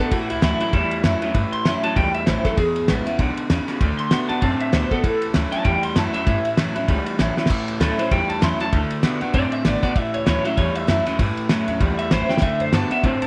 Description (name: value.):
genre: rockabilly.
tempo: 195 BPM.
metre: 4/4.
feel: swing 59% on 8ths.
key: A mixolydian.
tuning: A4 = 443 Hz.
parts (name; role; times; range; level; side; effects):
electric guitar through a small old amp; melody; 0.0-13.3 s; E4 to C6; -27 LUFS; equal; phaser, tape echo.
picked steel-string acoustic guitar; accompaniment; 0.0-13.3 s; E2 to F#4; -28 LUFS; equal; none.
electric guitar through a small old amp; riff; 0.0-13.3 s; E2 to C4; -28 LUFS; equal; none.
upright bass; bass; 0.1-13.2 s; E1 to B2; -28 LUFS; equal; none.
cloth-damped thuddy drum kit; drums; 0.1-13.3 s; crash cymbal, kick drum, ride cymbal, snare drum; -25 LUFS; equal; none.
room: studio reverb.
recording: none.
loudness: -21 LUFS.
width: mono.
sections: 0.0-7.5 A section; 7.5-13.3 B section.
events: drum fill 7.3, 12.3; clean electric guitar solo 7.5-13.3.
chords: 0.1 A; 2.6 E; 3.8 D; 5.0 A; 8.7 D; 10.0 A; 12.4 D.